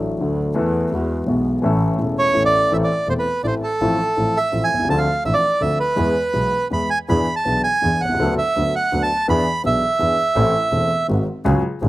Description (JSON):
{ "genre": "tango", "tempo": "166 BPM", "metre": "3/4", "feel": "rubato", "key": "A harmonic minor", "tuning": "A4 = 440 Hz", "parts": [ { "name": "warm grand piano", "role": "accompaniment", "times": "0.0-11.9 s", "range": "E1 to A4", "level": "-21 LUFS", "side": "left 1 dB", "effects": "none" }, { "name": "clear double bass", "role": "bass", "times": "0.0-11.9 s", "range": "E1 to E2", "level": "-24 LUFS", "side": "right 1 dB", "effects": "none" }, { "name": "bandoneon", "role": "melody", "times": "2.2-11.1 s", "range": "A4 to B5", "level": "-18 LUFS", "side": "right 2 dB", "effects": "slapback echo" } ], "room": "little or no reverb", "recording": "recorded outdoors, with no room sound, vinyl crackle", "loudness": "-16 LUFS", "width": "side -17 dB against mid", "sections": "0.0-2.7 A section; 2.7-11.5 B section", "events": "none", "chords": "0.0 D; 0.6 Esus4; 0.9 Eadd9; 1.6 A; 2.7 Am; 3.8 Fmaj7/A; 4.9 Dm7; 6.0 E; 7.1 E7; 8.2 Bm7/D; 9.3 E7; 10.4 Am; 11.1 G#7", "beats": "0.20 | 0.56 0.91 1.27 | 1.63 1.99 2.35 | 2.72 3.08 3.45 | 3.81 4.17 4.53 | 4.89 5.26 5.62 | 5.98 6.35 6.72 | 7.09 7.46 7.82 | 8.19 8.55 8.91 | 9.28 9.64 10.00 | 10.36 10.73 11.10 | 11.46 11.82" }